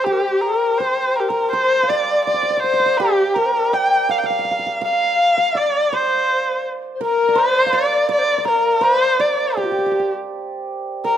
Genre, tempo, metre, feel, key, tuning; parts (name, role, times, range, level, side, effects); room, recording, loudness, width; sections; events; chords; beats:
chinese traditional, Chinese chamber ensemble; 82 BPM; 2/4; rubato; G yu mode; A4 = 440 Hz
dark erhu; melody; 0.0-11.2 s; G4 to G5; -18 LUFS; right 1 dB
hammered dulcimer; second line; 0.0-11.2 s; G4 to G5; -24 LUFS; right 6 dB
large dizi; second line; 0.0-11.2 s; F4 to G5; -21 LUFS; left 6 dB
moderate recital hall reverb, RT60 1.3 s; close, detailed microphones; -15 LUFS; side -10 dB against mid
0.0-10.3 A section
| 0.05 0.78 | 1.51 2.24 | 2.97 3.71 | 4.46 5.19 | 5.92 6.65 | 7.37 8.10 | 8.83 9.57 | 10.31 11.05